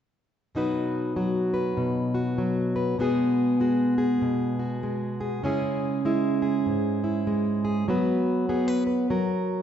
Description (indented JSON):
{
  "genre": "folk, solo fingerstyle acoustic guitar",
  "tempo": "98 BPM",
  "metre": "4/4",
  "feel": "swing 61% on 8ths",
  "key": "B major",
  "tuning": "A4 = 438 Hz",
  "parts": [
    { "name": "fingerpicked plugged-in steel-string acoustic guitar", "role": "solo", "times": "0.5-9.6 s", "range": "G#2 to B4", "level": "-23 LUFS", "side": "equal", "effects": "none" }
  ],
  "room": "moderate recital hall reverb, RT60 1.5 s",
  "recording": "recorded in a church or concert hall, nothing above 7.9 kHz",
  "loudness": "-23 LUFS",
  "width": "side -9 dB against mid",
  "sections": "0.5-9.6 A section",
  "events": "none",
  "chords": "0.5 B; 3.0 G#m7/B; 5.4 C#m; 7.9 F#sus4; 9.1 F#"
}